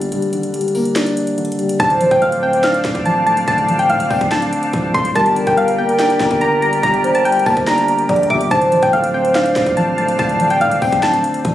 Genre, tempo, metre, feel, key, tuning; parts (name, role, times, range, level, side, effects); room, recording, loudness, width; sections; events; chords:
hip hop, trap; 143 BPM; 4/4; half-time; D minor; A4 = 439 Hz
dark concert grand piano; accompaniment; 0.0-11.5 s; G2 to D4; -20 LUFS; left 2 dB
distorted 808-style bass; bass; 0.0-11.5 s; D1 to A2; -26 LUFS; right 1 dB; distortion
trap drum kit; drums; 0.0-11.5 s; hi-hat, kick drum, snare drum; -24 LUFS; equal
soft round pluck; melody; 1.8-11.5 s; F5 to D6; -16 LUFS; left 1 dB; chorus
warm velvety synth lead; second line; 1.8-11.4 s; Bb4 to E5; -19 LUFS; right 1 dB; chorus, ping-pong delay
bright flute section; sustained chords; 1.8-11.5 s; D4 to F5; -24 LUFS; right 1 dB
light reverb, digital ambience; recorded on a phone in the room, studio reverb, vinyl crackle, compression; -13 LUFS; side -12 dB against mid
0.0-1.8 A section; 1.8-11.5 B section
break 0.0-1.8; kick muted 0.1-1.8
0.0 Gm; 1.8 Dm7; 5.2 Gm; 8.5 Dm7